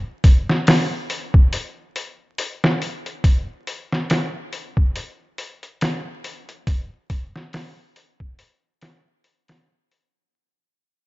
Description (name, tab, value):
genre	trip hop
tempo	70 BPM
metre	4/4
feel	swing 57% on 16ths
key	none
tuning	none
part	trip hop sampler-style drum kit	drums	0.2-10.1 s	hi-hat, kick drum, snare drum	-18 LUFS	equal	none
room	little or no reverb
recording	vinyl crackle, nothing above 7.7 kHz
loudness	-19 LUFS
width	side -20 dB against mid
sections	0.0-10.1 A section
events	fade-out 1.0-10.1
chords	none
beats	0.67 1.53 2.39 | 3.24 4.10 4.96 5.82 | 6.67 7.53 8.39 9.24